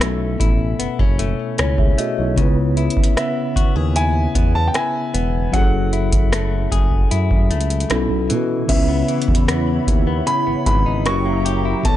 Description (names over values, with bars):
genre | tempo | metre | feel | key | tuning
contemporary R&B | 76 BPM | 4/4 | straight | unclear | A4 = 440 Hz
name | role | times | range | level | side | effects
warm grand piano | melody | 0.0-12.0 s | E5 to C#6 | -24 LUFS | right 1 dB | none
mellow tine electric piano | accompaniment | 0.0-12.0 s | B2 to E5 | -23 LUFS | equal | medium stereo tremolo
direct-recorded clean electric guitar | arpeggios | 0.0-12.0 s | B2 to G#4 | -25 LUFS | left 8 dB | spring reverb, ping-pong delay
smooth synth bass | bass | 0.0-12.0 s | E1 to B2 | -20 LUFS | equal | none
booming analog drum machine | drums | 0.0-12.0 s | crash cymbal, hi-hat, kick drum, rim click | -18 LUFS | equal | overdrive
hollow soft pad | sustained chords | 8.7-12.0 s | F#3 to D#6 | -27 LUFS | right 2 dB | ensemble chorus, sidechain pumping
room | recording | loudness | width
little or no reverb | nothing above 10.9 kHz | -16 LUFS | side -13 dB against mid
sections
0.0-8.7 A section; 8.7-12.0 B section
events
none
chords
0.0 B9sus4; 2.4 C#m7; 5.5 F#m9; 7.9 B9sus4; 8.7 C#m9; 11.1 F#7b9